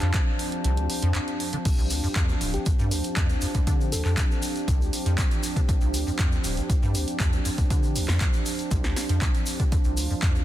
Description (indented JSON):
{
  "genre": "acid house",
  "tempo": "119 BPM",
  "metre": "4/4",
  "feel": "straight",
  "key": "D minor pentatonic",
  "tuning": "A4 = 441 Hz",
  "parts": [
    { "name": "warm analog pad", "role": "sustained chords", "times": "0.0-10.4 s", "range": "F3 to G4", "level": "-34 LUFS", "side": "equal", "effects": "chorus, sidechain pumping" },
    { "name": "acid bass, square", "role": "riff", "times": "0.0-10.4 s", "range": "D1 to D3", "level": "-27 LUFS", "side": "equal", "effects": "overdrive, ensemble chorus" },
    { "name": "punchy analog drum machine", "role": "drums", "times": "0.0-10.3 s", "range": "crash cymbal, handclaps, hi-hat, snare drum", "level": "-32 LUFS", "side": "equal", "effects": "none" },
    { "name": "warbly tape-like pad", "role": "texture", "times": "0.0-10.4 s", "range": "D4 to A5", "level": "-33 LUFS", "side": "right 2 dB", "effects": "chorus, built-in reverb, sidechain pumping" },
    { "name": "electronic kick drum", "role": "drums", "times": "0.1-10.3 s", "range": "none", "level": "-24 LUFS", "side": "equal", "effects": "none" },
    { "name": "egg shaker", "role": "percussion", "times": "1.7-10.4 s", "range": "none", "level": "-37 LUFS", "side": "left 2 dB", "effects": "none" },
    { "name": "soft struck synth lead", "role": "melody", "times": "2.5-4.1 s", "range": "G4 to A4", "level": "-38 LUFS", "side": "left 2 dB", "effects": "chorus, cassette tape, dub echo" }
  ],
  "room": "little or no reverb",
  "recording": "dense, heavily limited modern master",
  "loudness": "-22 LUFS",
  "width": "side -13 dB against mid",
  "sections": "0.0-10.4 A section",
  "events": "kick drops out 0.6-1.7",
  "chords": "0.0 Dm7"
}